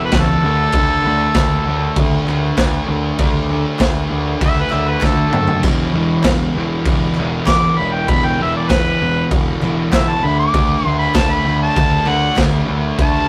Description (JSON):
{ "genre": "garage rock duo or trio", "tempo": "98 BPM", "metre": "4/4", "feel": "straight", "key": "unclear", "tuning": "A4 = 440 Hz", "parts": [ { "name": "mellow harmonica", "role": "melody", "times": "0.0-13.3 s", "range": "A4 to D6", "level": "-20 LUFS", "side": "equal", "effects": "overdrive" }, { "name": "fuzz guitar", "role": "riff", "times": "0.0-13.3 s", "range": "E2 to D4", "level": "-21 LUFS", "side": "equal", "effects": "distortion" }, { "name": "growling picked electric bass", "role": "bass", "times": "0.0-13.3 s", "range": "E1 to F#2", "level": "-24 LUFS", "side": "equal", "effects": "overdrive, tube saturation" }, { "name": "raw garage drum kit", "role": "drums", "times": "0.1-13.1 s", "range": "crash cymbal, kick drum, snare drum, splash cymbal, toms", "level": "-21 LUFS", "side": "equal", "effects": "none" }, { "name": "group handclap", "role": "percussion", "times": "0.1-12.5 s", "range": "none", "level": "-34 LUFS", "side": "equal", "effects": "none" } ], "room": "light reverb", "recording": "rough rehearsal-room recording, tube saturation", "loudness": "-16 LUFS", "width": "mono", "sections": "0.0-13.3 A section", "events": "harmonica solo 0.0-13.3; drum fill 5.0-5.6", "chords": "0.4 D5; 5.6 E5; 10.2 D5" }